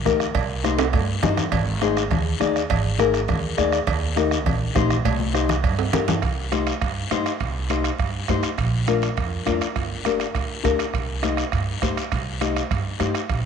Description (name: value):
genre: latin, cumbia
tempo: 204 BPM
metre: 4/4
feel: straight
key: C minor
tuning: A4 = 438 Hz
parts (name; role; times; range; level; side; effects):
- upright bass; bass; 0.0-13.5 s; G1 to G2; -26 LUFS; right 2 dB; none
- nylon-string guitar; accompaniment; 0.1-13.2 s; D4 to Eb5; -25 LUFS; left 9 dB; none
- bombo; percussion; 0.1-13.4 s; none; -26 LUFS; right 7 dB; none
- congas; percussion; 0.1-13.4 s; none; -28 LUFS; left 7 dB; none
- guiro; percussion; 0.1-13.5 s; none; -34 LUFS; left 9 dB; none
- cowbell and timbales; percussion; 0.3-13.4 s; none; -31 LUFS; right 13 dB; none
room: moderate plate reverb, RT60 3.2 s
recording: 1960s-style stereo with parts hard left and right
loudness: -20 LUFS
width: side -7 dB against mid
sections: 0.0-6.2 A section; 6.2-13.5 B section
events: drum fill 0.8-1.5, 5.0-6.2; nylon-string guitar fill 1.1-1.5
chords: 0.3 Cm; 1.5 Ab5; 3.9 Eb; 5.0 Cm; 8.6 Bb; 9.8 Gm; 10.9 Cm